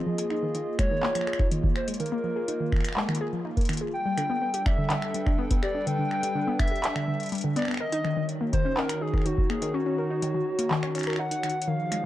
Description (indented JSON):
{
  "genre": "IDM",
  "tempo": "124 BPM",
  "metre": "4/4",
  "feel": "straight",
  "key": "unclear",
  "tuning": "A4 = 439 Hz",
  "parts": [
    { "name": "hollow soft pad", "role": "sustained chords", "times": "0.0-12.1 s", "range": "Eb3 to G5", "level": "-33 LUFS", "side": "right 1 dB", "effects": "chorus" },
    { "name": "warbly nostalgic lead", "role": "melody", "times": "0.1-12.1 s", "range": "Gb4 to G5", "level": "-30 LUFS", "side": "equal", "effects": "chorus, vintage 12-bit sampler grit, tape echo" },
    { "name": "warbly dusty pluck", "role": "arpeggios", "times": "0.1-12.0 s", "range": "D3 to Bb4", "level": "-30 LUFS", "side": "left 2 dB", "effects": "chorus, digital delay" },
    { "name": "electro analog drum machine", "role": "drums", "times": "0.2-12.0 s", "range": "finger snaps, handclaps, hi-hat", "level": "-33 LUFS", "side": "equal", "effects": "none" },
    { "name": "electronic kick drum", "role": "drums", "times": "0.8-9.5 s", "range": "none", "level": "-25 LUFS", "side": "equal", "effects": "none" }
  ],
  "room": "little or no reverb",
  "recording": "dark, warm production",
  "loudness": "-24 LUFS",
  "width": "side -14 dB against mid",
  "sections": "0.0-11.7 A section",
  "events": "kick drops out 9.7-11.7; drum fill 11.4",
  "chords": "0.1 Bb7sus4; 3.9 G; 7.8 Ebm7"
}